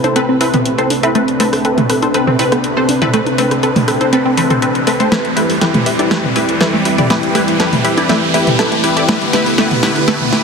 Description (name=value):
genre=progressive house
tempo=121 BPM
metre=4/4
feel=straight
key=A minor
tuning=A4 = 440 Hz
part: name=lush unison pad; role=sustained chords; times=0.0-10.4 s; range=C3 to B4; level=-18 LUFS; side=equal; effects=chorus
part: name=wide unison pluck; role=stabs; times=0.0-10.4 s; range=C4 to D5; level=-16 LUFS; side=left 1 dB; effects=phaser, digital delay
part: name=house drum kit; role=drums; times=0.0-10.4 s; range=hi-hat, rim click, snare drum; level=-20 LUFS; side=equal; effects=none
part: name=electronic congas and toms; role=percussion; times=0.0-10.3 s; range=none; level=-20 LUFS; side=left 1 dB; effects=none
part: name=riser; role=sound effects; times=0.4-10.4 s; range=none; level=-23 LUFS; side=equal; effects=none
part: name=wide unison pluck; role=arpeggios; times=0.2-10.4 s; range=E3 to A4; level=-18 LUFS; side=right 1 dB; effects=digital delay
room=moderate concert hall reverb, RT60 2.3 s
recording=heavily compressed radio sound, multiband compression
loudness=-11 LUFS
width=side -5 dB against mid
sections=0.0-10.4 A section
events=build-up 0.0-10.4; filter sweep on synth pluck 0.0-10.4; riser 0.4-10.4; drum fill 5.1-10.4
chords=0.0 Amadd9; 5.1 Em; 9.1 G